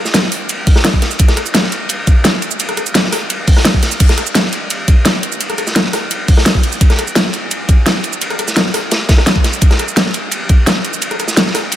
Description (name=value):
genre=drum and bass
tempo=171 BPM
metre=4/4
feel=straight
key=none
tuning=none
part: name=crunchy breakbeat drum kit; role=drums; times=0.1-11.8 s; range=hi-hat, ride cymbal, snare drum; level=-18 LUFS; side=equal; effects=high-pass filter on cymbals, high-pass filter on hats, high-pass filter on snare, high-pass filter on room
part: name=pop drum kit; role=drums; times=0.1-11.8 s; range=crash cymbal, hi-hat, rim click, shaker, snare drum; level=-15 LUFS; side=equal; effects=overdrive
part: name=electronic kick drum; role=drums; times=0.7-10.6 s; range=none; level=-10 LUFS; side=equal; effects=overdrive
room=light reverb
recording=none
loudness=-11 LUFS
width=side -12 dB against mid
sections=0.0-11.8 A section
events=none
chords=none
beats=0.14 0.49 0.84 | 1.20 1.55 1.90 2.25 | 2.60 2.95 3.30 3.65 | 4.00 4.35 4.71 5.05 | 5.41 5.76 6.11 6.46 | 6.81 7.16 7.51 7.86 | 8.21 8.56 8.91 9.27 | 9.62 9.97 10.32 10.67 | 11.02 11.37 11.72